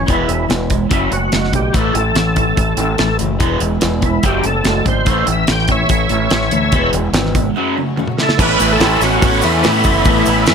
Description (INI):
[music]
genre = classic rock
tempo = 145 BPM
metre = 4/4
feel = straight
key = A major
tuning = A4 = 438 Hz
[part]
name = overdriven tonewheel organ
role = melody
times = 0.0-10.5 s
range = E4 to G5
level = -18 LUFS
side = right 1 dB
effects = slow rotary speaker, chorus vibrato
[part]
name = picked steel-string acoustic guitar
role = accompaniment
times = 0.0-10.5 s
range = E2 to F#4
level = -27 LUFS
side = left 7 dB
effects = none
[part]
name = crunchy overdriven guitar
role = riff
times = 0.0-10.5 s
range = E2 to E4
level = -21 LUFS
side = left 13 dB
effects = spring reverb
[part]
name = raw garage guitar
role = riff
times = 0.0-10.5 s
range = F#2 to E4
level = -21 LUFS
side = right 14 dB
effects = overdrive, phaser
[part]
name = growling fingered electric bass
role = bass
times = 0.0-10.5 s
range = E1 to A2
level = -19 LUFS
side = equal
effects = overdrive
[part]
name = damped 70s drum kit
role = drums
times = 0.1-10.5 s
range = crash cymbal, hi-hat, kick drum, snare drum, toms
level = -18 LUFS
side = right 1 dB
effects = none
[part]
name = ensemble organ-string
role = sustained chords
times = 1.7-10.5 s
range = G#3 to D5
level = -29 LUFS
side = equal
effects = none
[part]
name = octave-fuzz lead guitar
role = second line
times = 8.2-10.5 s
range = B3 to E4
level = -24 LUFS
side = right 4 dB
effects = distortion
[part]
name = clear upright piano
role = accompaniment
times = 8.4-10.5 s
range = B3 to A4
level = -27 LUFS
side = right 6 dB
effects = none
[part]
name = overdriven electric guitar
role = riff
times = 8.4-10.5 s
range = A2 to A3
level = -22 LUFS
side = right 2 dB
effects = tremolo
[part]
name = tube shaker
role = percussion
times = 8.4-10.5 s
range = none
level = -30 LUFS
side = left 12 dB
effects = none
[sound]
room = studio ambience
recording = none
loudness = -12 LUFS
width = side -6 dB against mid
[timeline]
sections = 0.0-8.4 A section; 8.4-10.5 B section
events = tonewheel organ solo 0.0-8.4; drum fill 8.0-8.4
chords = 0.1 E; 0.9 F#m; 1.8 A; 3.4 E; 4.2 F#m; 5.1 A; 6.7 E; 7.6 F#m; 8.4 Aadd9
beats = | 0.09 0.51 0.92 1.34 | 1.75 2.17 2.58 3.00 | 3.41 3.83 4.24 4.66 | 5.07 5.49 5.90 6.32 | 6.73 7.15 7.56 7.98 | 8.39 8.81 9.22 9.64 | 10.05 10.46